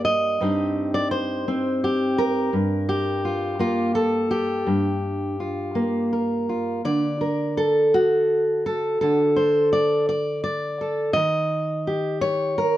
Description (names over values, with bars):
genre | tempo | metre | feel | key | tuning
folk, solo fingerstyle acoustic guitar | 84 BPM | 3/4 | rubato | unclear | A4 = 440 Hz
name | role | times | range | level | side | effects
fingerpicked steel-string acoustic guitar | solo | 0.0-12.8 s | G2 to Eb5 | -20 LUFS | equal | none
room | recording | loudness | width
light reverb | dark, warm production | -20 LUFS | side -14 dB against mid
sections
0.0-6.8 A section; 6.8-12.8 B section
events
none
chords
0.4 Cm/G; 2.5 Gm7; 6.8 D; 11.2 Eb7